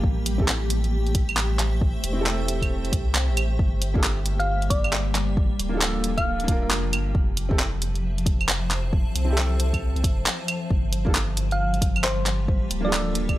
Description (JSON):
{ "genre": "future garage", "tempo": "135 BPM", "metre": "4/4", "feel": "swing 62% on 16ths", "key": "G dorian", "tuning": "A4 = 441 Hz", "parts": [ { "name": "clear upright piano", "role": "accompaniment", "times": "0.0-13.4 s", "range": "Bb3 to Bb4", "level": "-32 LUFS", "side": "right 1 dB", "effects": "vintage 12-bit sampler grit, sidechain pumping, tape echo" }, { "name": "granular cloud pad", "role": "sustained chords", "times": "0.0-13.4 s", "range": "F3 to A5", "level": "-31 LUFS", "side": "left 1 dB", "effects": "built-in reverb, sidechain pumping" }, { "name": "warm sub bass", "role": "bass", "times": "0.0-13.4 s", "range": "D1 to C2", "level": "-25 LUFS", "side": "equal", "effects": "tube saturation, sidechain pumping" }, { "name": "electronic kick drum", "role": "drums", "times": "0.0-13.4 s", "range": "none", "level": "-24 LUFS", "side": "equal", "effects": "studio reverb" }, { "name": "garage drum kit", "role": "drums", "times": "0.3-13.4 s", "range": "claves, handclaps, hi-hat", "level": "-26 LUFS", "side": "right 1 dB", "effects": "overdrive, studio reverb" }, { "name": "thumb-piano-like synth pluck", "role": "melody", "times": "4.4-6.8, 11.5-13.2 s", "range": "C5 to F5", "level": "-29 LUFS", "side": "equal", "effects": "chorus, analog delay" } ], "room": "digital ambience", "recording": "dry, gritty hardware recording", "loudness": "-21 LUFS", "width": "side -15 dB against mid", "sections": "0.0-13.4 A section", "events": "none", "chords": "0.0 Am7; 3.6 Gm9; 7.2 Fmaj9; 10.7 Gm9" }